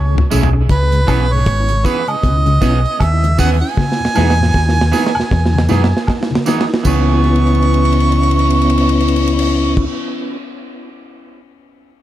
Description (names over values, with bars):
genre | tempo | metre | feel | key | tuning
roots reggae | 78 BPM | 4/4 | swing 59% on 16ths | C# minor | A4 = 444 Hz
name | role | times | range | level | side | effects
warm harmonica | melody | 0.0-9.9 s | B4 to C#6 | -20 LUFS | right 3 dB | tape echo
fingered electric bass | bass | 0.0-9.9 s | G#1 to F#2 | -14 LUFS | equal | none
mellow tonewheel organ | accompaniment | 0.1-9.9 s | E2 to G#4 | -20 LUFS | left 2 dB | chorus vibrato, slow rotary speaker, tape echo
mellow electric guitar | arpeggios | 0.2-8.7 s | G#2 to E3 | -23 LUFS | left 4 dB | none
deep reggae drum kit | drums | 0.2-11.4 s | crash cymbal, hi-hat, kick drum, ride cymbal, rim click, snare drum, toms | -19 LUFS | equal | tape echo
electric guitar at the edge of break-up | accompaniment | 0.3-10.4 s | E3 to G#4 | -22 LUFS | right 6 dB | tape echo
tambourine and woodblock | percussion | 0.3-9.9 s | none | -27 LUFS | right 1 dB | none
room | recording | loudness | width
light reverb, small room ambience | echo-heavy mix | -12 LUFS | side -13 dB against mid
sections
0.7-6.8 A section; 6.8-9.9 B section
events
drum fill 0.0-0.7, 3.8-6.8, 7.2-9.7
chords
0.0 Amaj7; 0.7 C#m7; 3.8 Emaj7; 6.8 C#m7